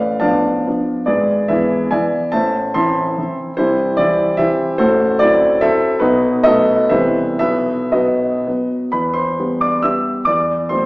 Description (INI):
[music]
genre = classical, romantic triple-time dance for piano with dotted rhythms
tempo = 105-157 BPM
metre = 3/4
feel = rubato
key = A minor, E minor from 3.6 s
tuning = A4 = 443 Hz
[part]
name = warm concert grand piano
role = solo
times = 0.0-10.9 s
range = G#1 to E6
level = -14 LUFS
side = equal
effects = none
[sound]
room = wet recital hall reverb, RT60 1.4 s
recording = heard from further back in the room, small speaker sound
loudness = -14 LUFS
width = side -23 dB against mid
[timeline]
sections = 0.0-8.9 A section; 8.9-10.9 B section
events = none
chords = 0.0 Bm7b5/A; 1.1 E7/G#; 2.3 Am; 3.6 C; 4.8 F#m7b5/A; 6.0 B7; 6.9 Cmaj7; 7.4 B; 8.9 Em; 10.3 F#m7b5/E